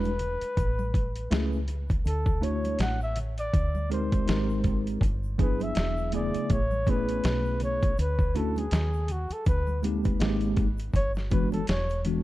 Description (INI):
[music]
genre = hip hop, jazz-hop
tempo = 81 BPM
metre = 4/4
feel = swing 57% on 16ths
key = A major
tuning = A4 = 441 Hz
[part]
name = breathy flugelhorn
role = melody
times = 0.0-12.0 s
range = F#4 to F#5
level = -33 LUFS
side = left 1 dB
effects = analog delay
[part]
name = tine electric piano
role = accompaniment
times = 0.0-12.2 s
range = C#3 to C#5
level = -30 LUFS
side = equal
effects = medium stereo tremolo
[part]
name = deep dub fingered electric bass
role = bass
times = 0.0-12.2 s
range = E1 to D#2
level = -30 LUFS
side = equal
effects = none
[part]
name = congas and tube shaker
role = percussion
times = 0.0-12.2 s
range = none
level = -43 LUFS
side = left 2 dB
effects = none
[part]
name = dusty soul sampler-style drum kit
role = drums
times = 0.1-12.2 s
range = hi-hat, kick drum, snare drum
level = -28 LUFS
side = equal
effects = overdrive
[sound]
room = little or no reverb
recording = dark, warm production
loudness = -25 LUFS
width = side -16 dB against mid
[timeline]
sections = 0.0-12.2 A section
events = flugelhorn solo 0.0-12.2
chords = 0.0 E9; 0.6 Amaj9; 2.1 Dmaj9; 3.5 G#maj9#11/D; 4.3 G#maj9; 5.0 Gmaj7; 5.8 E9; 6.5 Amaj9; 8.0 Dmaj9; 9.5 Bm/D; 10.2 G#maj9; 10.9 Gmaj7; 11.7 E9